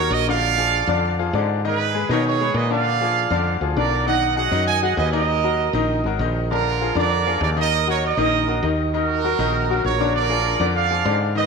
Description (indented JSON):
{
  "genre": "latin, salsa",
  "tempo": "197 BPM",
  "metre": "4/4",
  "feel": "straight",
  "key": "Eb minor",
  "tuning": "A4 = 440 Hz",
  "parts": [
    { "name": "bright trumpet section", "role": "melody", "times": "0.0-11.5 s", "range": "F4 to G#5", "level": "-21 LUFS", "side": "right 8 dB", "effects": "none" },
    { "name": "bright baby grand piano", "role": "accompaniment", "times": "0.0-11.5 s", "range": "D3 to Eb5", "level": "-23 LUFS", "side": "left 8 dB", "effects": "none" },
    { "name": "woody fretless electric bass", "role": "bass", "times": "0.0-11.5 s", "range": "Ab1 to Cb3", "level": "-24 LUFS", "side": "equal", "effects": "none" }
  ],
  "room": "wet echo chamber reverb, RT60 2.1 s",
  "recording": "1960s-style stereo with parts hard left and right",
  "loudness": "-18 LUFS",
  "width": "side -4 dB against mid",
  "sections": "0.0-8.9 A section; 8.9-11.5 A section",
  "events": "none",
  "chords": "0.4 Bb7; 1.6 Db7sus2; 2.9 Bb7; 4.1 B6; 5.3 Ebm; 6.5 Bb7; 7.7 Ebm; 8.9 Ebm7; 10.1 Bb7"
}